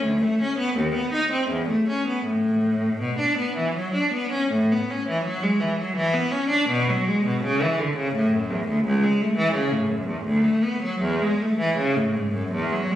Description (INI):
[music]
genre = classical, baroque-style suite movement for unaccompanied cello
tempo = 75-86 BPM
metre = 3/4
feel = rubato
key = A major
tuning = A4 = 440 Hz
[part]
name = clear cello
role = solo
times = 0.0-13.0 s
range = C#2 to Eb4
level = -21 LUFS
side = equal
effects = none
[sound]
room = wet recital hall reverb, RT60 1.4 s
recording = recorded on a phone in the room, studio reverb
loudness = -21 LUFS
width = side -12 dB against mid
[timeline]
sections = 0.0-4.5 A section; 4.5-13.0 B section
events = none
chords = none